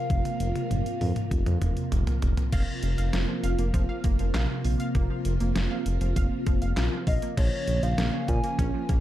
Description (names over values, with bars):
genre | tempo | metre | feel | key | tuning
synth-pop | 99 BPM | 4/4 | straight | unclear | A4 = 440 Hz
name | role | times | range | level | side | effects
hollow clarinet-like synth lead | melody | 0.0-1.9, 7.1-8.9 s | Db5 to Ab5 | -33 LUFS | equal | chorus, tape echo
ensemble organ-string | sustained chords | 0.0-9.0 s | C3 to F4 | -32 LUFS | equal | phaser, ensemble chorus
smooth synth bass | bass | 0.1-9.0 s | F1 to Bb2 | -27 LUFS | equal | none
detuned 8-bit digital drum machine | drums | 0.1-9.0 s | crash cymbal, handclaps, hi-hat, kick drum, snare drum, toms | -28 LUFS | equal | none
analog pluck | arpeggios | 2.5-9.0 s | F3 to F5 | -36 LUFS | right 3 dB | chorus, tape echo
room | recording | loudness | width
light reverb, digital ambience | echo-heavy mix | -24 LUFS | side -13 dB against mid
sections
0.0-2.5 A section; 2.5-7.4 B section; 7.4-9.0 C section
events
drum fill 0.1-2.5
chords
0.0 Fsus4; 7.4 Bbm